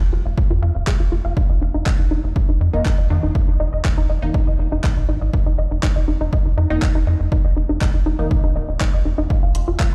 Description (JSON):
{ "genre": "melodic techno", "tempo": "121 BPM", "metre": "4/4", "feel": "straight", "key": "unclear", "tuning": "A4 = 441 Hz", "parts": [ { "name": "tight sequenced synth", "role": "arpeggios", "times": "0.0-9.9 s", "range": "Eb4 to C6", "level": "-30 LUFS", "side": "equal", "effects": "chorus, sidechain pumping, dub echo" }, { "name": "tight sequencer bass", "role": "bass", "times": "0.0-9.9 s", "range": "Eb1 to F2", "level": "-24 LUFS", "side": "equal", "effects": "sidechain pumping" }, { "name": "electronic kick drum", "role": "drums", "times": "0.4-9.9 s", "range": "none", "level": "-20 LUFS", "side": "equal", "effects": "none" }, { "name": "deep house drum kit", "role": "drums", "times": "0.9-9.9 s", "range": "handclaps, hi-hat", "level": "-31 LUFS", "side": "equal", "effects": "none" }, { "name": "filtered dub chord stab", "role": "stabs", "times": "2.7-9.3 s", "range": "Eb3 to Eb4", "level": "-30 LUFS", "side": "equal", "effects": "phaser, sidechain pumping, dub echo" }, { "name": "dark analog pad", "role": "sustained chords", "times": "9.6-9.9 s", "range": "F4 to Ab5", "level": "-47 LUFS", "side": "equal", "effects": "none" } ], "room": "little or no reverb", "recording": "played on a big sound system in a bare room, large studio reverb", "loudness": "-19 LUFS", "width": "mono", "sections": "0.0-9.9 A section", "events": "none", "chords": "0.0 N.C.; 1.4 Ebsus2; 9.3 Fm", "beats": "0.38 0.87 | 1.37 1.86 2.36 2.85 | 3.35 3.85 4.34 4.84 | 5.33 5.83 6.33 6.82 | 7.32 7.81 8.31 8.81 | 9.30 9.80" }